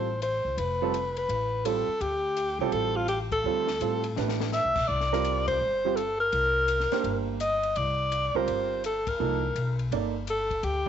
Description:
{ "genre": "modal jazz", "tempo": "167 BPM", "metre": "4/4", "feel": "swing 65% on 8ths", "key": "C dorian", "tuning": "A4 = 440 Hz", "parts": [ { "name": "breathy alto saxophone", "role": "melody", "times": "0.0-10.9 s", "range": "F4 to E5", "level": "-27 LUFS", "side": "left 1 dB", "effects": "slapback echo" }, { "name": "warm baby grand piano", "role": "accompaniment", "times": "0.0-10.9 s", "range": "F3 to D5", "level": "-30 LUFS", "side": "right 14 dB", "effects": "none" }, { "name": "upright bass", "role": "bass", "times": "0.0-10.9 s", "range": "F1 to A2", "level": "-33 LUFS", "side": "left 2 dB", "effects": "none" }, { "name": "compact cocktail drum kit", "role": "drums", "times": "0.2-10.9 s", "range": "crash cymbal, hi-hat, kick drum, ride cymbal, snare drum", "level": "-40 LUFS", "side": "left 9 dB", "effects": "none" } ], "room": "light reverb, small room reverb", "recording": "1960s-style stereo with parts hard left and right, nothing above 7.8 kHz", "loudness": "-25 LUFS", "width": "side -9 dB against mid", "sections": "0.0-10.9 A section", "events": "band accent 3.3, 5.4, 9.0; drum fill 4.2-4.5", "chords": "0.0 Dm7; 4.9 C7sus2", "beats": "0.21 | 0.57 0.93 1.29 1.65 | 2.01 2.37 2.73 3.09 | 3.45 3.81 4.17 4.53 | 4.88 5.24 5.60 5.96 | 6.32 6.68 7.04 7.40 | 7.76 8.12 8.48 8.84 | 9.19 9.55 9.91 10.27 | 10.63" }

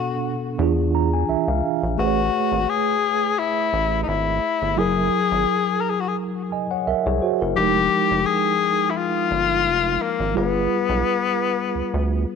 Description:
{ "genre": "R&B, neo-soul", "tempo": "86 BPM", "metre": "4/4", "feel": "swing 54% on 16ths", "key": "unclear", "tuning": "A4 = 437 Hz", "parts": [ { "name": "breathy tenor saxophone", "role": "melody", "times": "0.0-12.4 s", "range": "Bb3 to A#4", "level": "-21 LUFS", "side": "left 8 dB", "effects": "none" }, { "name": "mellow tine electric piano", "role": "accompaniment", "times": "0.0-12.4 s", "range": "B2 to Bb5", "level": "-23 LUFS", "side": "right 3 dB", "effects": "medium stereo tremolo" }, { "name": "rubbery square bass", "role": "bass", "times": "0.6-12.3 s", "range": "F1 to E2", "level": "-24 LUFS", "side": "right 2 dB", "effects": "none" } ], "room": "light reverb, small room ambience", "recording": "none", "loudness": "-19 LUFS", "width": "side -6 dB against mid", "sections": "0.0-12.4 A section", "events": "tine electric piano fill 0.6-2.0", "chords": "0.0 Bm7; 0.6 E7b9; 2.0 Amaj9; 4.8 F#9; 7.6 Fm9; 10.3 G7b9", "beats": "0.58 1.28 | 1.98 2.67 3.37 4.07 | 4.77 5.46 6.16 6.86 | 7.56 8.26 8.95 9.65 | 10.35 11.04 11.74" }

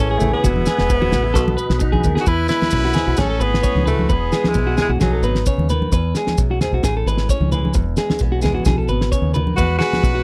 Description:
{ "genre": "highlife guitar band", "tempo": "131 BPM", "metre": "4/4", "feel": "straight", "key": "E major", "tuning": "A4 = 440 Hz", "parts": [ { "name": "bright tenor saxophone", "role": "melody", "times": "0.0-5.4, 9.6-10.2 s", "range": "F#3 to F#4", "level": "-24 LUFS", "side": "equal", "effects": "none" }, { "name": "picked acoustic archtop guitar", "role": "accompaniment", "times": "0.0-10.2 s", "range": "E2 to G#4", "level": "-29 LUFS", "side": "equal", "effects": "none" }, { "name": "mellow tonewheel organ", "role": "sustained chords", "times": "0.0-2.3 s", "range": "C#5 to B5", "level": "-36 LUFS", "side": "equal", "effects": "slow rotary speaker, chorus vibrato" }, { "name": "clean electric guitar", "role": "arpeggios", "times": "0.0-10.2 s", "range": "F#4 to C#5", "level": "-26 LUFS", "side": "equal", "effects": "slapback echo" }, { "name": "deep dub fingered electric bass", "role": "bass", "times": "0.0-10.2 s", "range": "E1 to E2", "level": "-23 LUFS", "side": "equal", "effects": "none" }, { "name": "congas", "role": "percussion", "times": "0.2-10.0 s", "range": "none", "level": "-26 LUFS", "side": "equal", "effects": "none" }, { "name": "maracas", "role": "percussion", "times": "0.2-10.2 s", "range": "none", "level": "-34 LUFS", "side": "equal", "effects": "none" }, { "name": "damped 70s drum kit", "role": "drums", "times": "0.4-10.1 s", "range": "kick drum, snare drum", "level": "-22 LUFS", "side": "equal", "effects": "none" }, { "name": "brilliant trumpet", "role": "second line", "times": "2.2-5.5, 9.6-10.2 s", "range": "D#4 to D#5", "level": "-32 LUFS", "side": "equal", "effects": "none" } ], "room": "little or no reverb", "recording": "dry, close 1970s-style studio recording", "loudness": "-18 LUFS", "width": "mono", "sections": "0.0-2.3 A section; 2.3-10.2 B section", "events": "drum fill 1.8-2.3", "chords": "0.4 Eadd9; 1.4 B; 2.3 Eadd9; 3.2 Amaj7; 4.1 Eadd9; 5.0 B; 5.9 Eadd9; 6.8 Amaj7; 7.7 Eadd9; 8.7 B; 9.6 Eadd9", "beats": "| 0.45 0.90 1.35 1.81 | 2.26 2.72 3.18 3.63 | 4.09 4.55 5.00 5.46 | 5.92 6.38 6.83 7.29 | 7.75 8.21 8.66 9.12 | 9.58 10.03" }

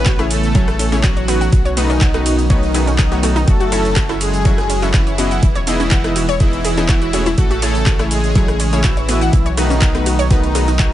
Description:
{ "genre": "progressive house", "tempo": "123 BPM", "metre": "4/4", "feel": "straight", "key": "unclear", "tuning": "A4 = 442 Hz", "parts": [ { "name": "soft supersaw", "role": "melody", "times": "0.0-10.9 s", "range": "D#3 to B4", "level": "-22 LUFS", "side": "equal", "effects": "phaser, sidechain pumping, tape echo" }, { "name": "airy dreamy lead", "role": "second line", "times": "0.0-10.9 s", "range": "D#4 to B4", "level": "-27 LUFS", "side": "equal", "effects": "chorus, phaser, sidechain pumping, tape echo" }, { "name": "airy breathy pad", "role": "sustained chords", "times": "0.0-10.9 s", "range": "B2 to D#5", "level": "-26 LUFS", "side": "equal", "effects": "chorus, sidechain pumping" }, { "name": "round analog bass", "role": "bass", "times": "0.0-10.9 s", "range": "E1 to B1", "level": "-19 LUFS", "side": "equal", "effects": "sidechain pumping" }, { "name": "analog pluck", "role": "arpeggios", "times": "0.1-10.9 s", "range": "F#3 to F#5", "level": "-24 LUFS", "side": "left 1 dB", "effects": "chorus, sidechain pumping, tape echo" }, { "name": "deep house drum kit", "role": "drums", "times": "0.1-10.9 s", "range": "handclaps, hi-hat, ride cymbal, rim click, shaker", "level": "-24 LUFS", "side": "equal", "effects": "overdrive, sidechain pumping on hats, sidechain pumping on perc, sidechain pumping on cymbals" }, { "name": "electronic kick drum", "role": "drums", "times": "0.1-10.9 s", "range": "none", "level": "-14 LUFS", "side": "equal", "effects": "overdrive" }, { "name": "open jazz drum kit", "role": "drums", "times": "0.1-10.9 s", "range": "hi-hat, snare drum", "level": "-36 LUFS", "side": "right 3 dB", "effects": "none" }, { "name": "wide unison pluck", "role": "stabs", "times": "0.2-10.9 s", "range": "A3 to E5", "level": "-23 LUFS", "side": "left 1 dB", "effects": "sidechain pumping, tape echo" } ], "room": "little or no reverb", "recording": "nothing above 10.4 kHz", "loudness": "-13 LUFS", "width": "side -13 dB against mid", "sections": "0.0-10.9 A section", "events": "none", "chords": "0.0 Amaj7; 1.5 B7; 3.5 F#m7; 5.4 Emaj7; 7.4 Amaj7; 9.3 B7", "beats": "0.06 0.55 1.04 | 1.52 2.01 2.50 2.99 | 3.48 3.96 4.45 4.94 | 5.43 5.92 6.40 6.89 | 7.38 7.87 8.35 8.84 | 9.33 9.82 10.30 10.79" }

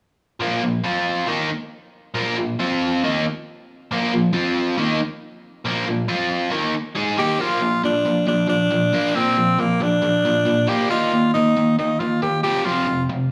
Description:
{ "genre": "rock", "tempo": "137 BPM", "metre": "4/4", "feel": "straight", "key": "Bb major", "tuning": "A4 = 440 Hz", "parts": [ { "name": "biting overdriven guitar", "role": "riff", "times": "0.4-13.3 s", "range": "F2 to Ab4", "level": "-22 LUFS", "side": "equal", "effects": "none" }, { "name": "raspy tenor saxophone", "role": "melody", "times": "7.2-13.0 s", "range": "Bb3 to G4", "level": "-22 LUFS", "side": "equal", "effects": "none" } ], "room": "light reverb", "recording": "studio reverb", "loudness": "-20 LUFS", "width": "mono", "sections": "0.4-7.4 A section; 7.4-13.3 B section", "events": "none", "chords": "0.4 Bb5; 0.8 F5; 1.3 Bb5; 2.6 F5; 3.0 Bb5; 4.3 F5; 4.8 Bb5; 6.1 F5; 6.5 Ebadd11; 7.4 Bb; 10.9 Eb5; 12.4 F5", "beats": "| 0.41 0.85 1.29 1.72 | 2.16 2.60 3.03 3.47 | 3.91 4.34 4.78 5.22 | 5.65 6.09 6.53 6.96 | 7.40 7.84 8.28 8.71 | 9.15 9.59 10.03 10.46 | 10.90 11.34 11.77 12.21 | 12.65 13.08" }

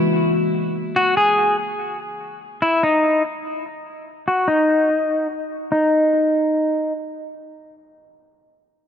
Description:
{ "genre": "hip hop", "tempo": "free time", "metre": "none", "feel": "none", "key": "unclear", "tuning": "A4 = 439 Hz", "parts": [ { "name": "warbly tape-like pad", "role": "sustained chords", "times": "0.0-0.7 s", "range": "E3 to F#4", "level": "-21 LUFS", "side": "left 1 dB", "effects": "chorus, built-in reverb" }, { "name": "clean electric guitar", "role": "melody", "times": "1.0-6.9 s", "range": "D#4 to G#4", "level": "-18 LUFS", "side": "left 1 dB", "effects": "digital delay" } ], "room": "moderate lush hall reverb, RT60 2.4 s", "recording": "low-pass filter, nothing above 10.3 kHz", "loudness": "-17 LUFS", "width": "side -8 dB against mid", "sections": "0.0-5.7 A section; 5.7-8.9 B section", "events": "filter sweep 0.0-5.7", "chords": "0.0 F#9; 2.4 N.C.", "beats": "free time" }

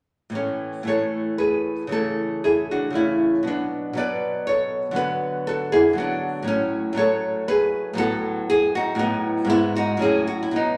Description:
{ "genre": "classical, baroque-style dance for nylon-string guitar", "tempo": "119 BPM", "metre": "3/4", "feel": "rubato", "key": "A major", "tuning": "A4 = 443 Hz", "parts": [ { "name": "nylon-string guitar", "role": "solo", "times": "0.3-10.8 s", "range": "G#2 to D5", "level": "-23 LUFS", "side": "equal", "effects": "none" } ], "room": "wet large studio reverb, RT60 1.2 s", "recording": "none", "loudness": "-23 LUFS", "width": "mono", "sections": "0.4-10.8 A section", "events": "none", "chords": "0.4 A; 1.9 A/C#; 3.5 Bm; 5.0 Bm/D; 6.5 F#m/A; 8.0 B7/A; 10.0 F#m/A", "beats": "| 0.36 0.89 1.41 | 1.93 2.46 2.97 | 3.47 3.97 4.47 | 4.97 5.47 5.98 | 6.48 6.98 7.48 | 7.99 8.49 8.99 | 9.51 10.02 10.56" }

